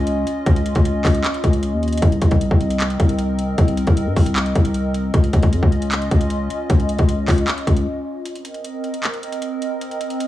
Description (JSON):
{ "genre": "hip hop, trap", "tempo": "154 BPM", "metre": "4/4", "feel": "half-time", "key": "C phrygian", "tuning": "A4 = 440 Hz", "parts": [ { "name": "hollow soft pad", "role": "sustained chords", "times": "0.0-10.3 s", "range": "C4 to Eb5", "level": "-25 LUFS", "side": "equal", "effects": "chorus" }, { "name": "growling 808-style bass", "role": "bass", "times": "0.0-7.9 s", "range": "C2 to G2", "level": "-20 LUFS", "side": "equal", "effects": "none" }, { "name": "trap drum kit", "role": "drums", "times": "0.1-10.3 s", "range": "handclaps, hi-hat, kick drum", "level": "-18 LUFS", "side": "equal", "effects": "none" } ], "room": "digital ambience", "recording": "small room ambience", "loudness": "-16 LUFS", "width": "side -14 dB against mid", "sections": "0.0-8.3 A section; 8.3-10.3 B section", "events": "break 7.9-8.3, 8.3-10.3", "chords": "0.0 Dbadd9; 2.0 Cm7; 5.1 Dbadd9; 8.3 Cm7" }